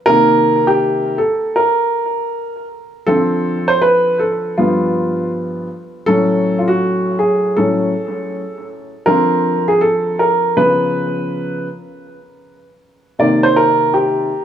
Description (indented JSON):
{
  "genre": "hip hop",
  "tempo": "80 BPM",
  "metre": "4/4",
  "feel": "swing 65% on 16ths",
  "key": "C dorian",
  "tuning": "A4 = 440 Hz",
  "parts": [
    { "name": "dark upright piano", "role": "solo", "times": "0.1-14.4 s", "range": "G2 to D5", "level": "-13 LUFS", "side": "equal", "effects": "analog delay" }
  ],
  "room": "moderate studio reverb, RT60 0.5 s",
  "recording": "studio reverb",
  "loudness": "-13 LUFS",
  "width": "side -9 dB against mid",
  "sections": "0.0-12.1 A section; 12.1-14.4 B section",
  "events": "upright piano solo 0.0-12.1, 12.1-14.4",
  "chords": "0.1 Cm7; 3.1 Dm7; 4.6 G7; 6.1 A6; 9.1 Bbmaj9/D; 10.6 Db7; 12.1 Cm7"
}